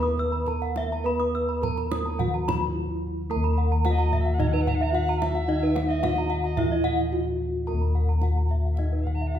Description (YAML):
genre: Balinese gamelan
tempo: 109 BPM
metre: 4/4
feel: straight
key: Eb pelog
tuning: A4 = 438 Hz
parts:
  - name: gamelan-type bronze metallophone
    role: melody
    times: 0.0-9.4 s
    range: Eb4 to Cb5-20c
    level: -29 LUFS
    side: equal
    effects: none
  - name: gamelan-type bronze metallophone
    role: accompaniment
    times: 0.0-9.4 s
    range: Eb3 to Cb4-20c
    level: -35 LUFS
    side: right 3 dB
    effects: none
  - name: gamelan-type bronze metallophone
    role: arpeggios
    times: 0.0-9.4 s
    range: Eb5 to Fb6+20c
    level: -32 LUFS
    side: left 4 dB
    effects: none
  - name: gamelan-type bronze metallophone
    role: arpeggios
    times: 0.0-9.4 s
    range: Cb5-20c to Eb6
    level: -33 LUFS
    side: right 6 dB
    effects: none
  - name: gamelan-type bossed gongs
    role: bass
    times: 0.0-9.4 s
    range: Eb2 to Cb5-20c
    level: -26 LUFS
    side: left 1 dB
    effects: none
  - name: kendang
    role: percussion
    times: 0.2-9.2 s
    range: none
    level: -34 LUFS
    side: right 3 dB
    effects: none
  - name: soprano recorder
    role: second line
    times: 3.9-9.4 s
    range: Eb5 to Bb5-24c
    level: -37 LUFS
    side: right 3 dB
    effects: none
room: wet recital hall reverb, RT60 1.7 s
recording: minimal, uncompressed stereo recording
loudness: -22 LUFS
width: side -10 dB against mid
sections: 0.0-3.3 A section; 3.3-9.4 B section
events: none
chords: none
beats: 0.47 | 1.06 1.63 2.19 2.75 | 3.30 3.85 4.40 4.94 | 5.49 6.04 6.58 7.13 | 7.68 8.23 8.78 9.35